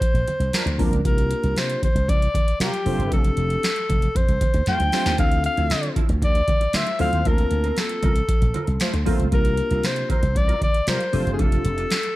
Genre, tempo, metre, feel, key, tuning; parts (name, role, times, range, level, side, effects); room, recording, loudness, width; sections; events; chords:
early-eighties boogie funk; 116 BPM; 4/4; straight; A4 = 440 Hz
breathy alto saxophone; melody; 0.0-12.2 s; G4 to G5; -25 LUFS; left 2 dB
booming analog drum machine; drums; 0.0-12.2 s; hi-hat, kick drum, snare drum; -22 LUFS; equal; gated reverb
congas; percussion; 0.0-12.0 s; -32 LUFS; right 2 dB
slap bass with an envelope filter; bass; 0.1-11.8 s; F1 to D3; -24 LUFS; equal
mellow synth brass; second line; 0.5-11.4 s; F3 to C5; -30 LUFS; right 2 dB; chorus
mellow tine electric piano; accompaniment; 0.8-12.0 s; Bb3 to A5; -29 LUFS; left 2 dB; medium stereo tremolo
mellow electric guitar; riff; 5.2-12.1 s; F3 to Bb4; -34 LUFS; right 7 dB; ensemble chorus
digital ambience; -19 LUFS; side -17 dB against mid
0.0-12.2 A section
drum fill 4.7-5.2
0.0 Bbadd9; 1.0 C7sus4; 2.9 F6; 5.2 Dm9; 7.3 Bbmaj9; 9.3 C7sus4; 11.1 F6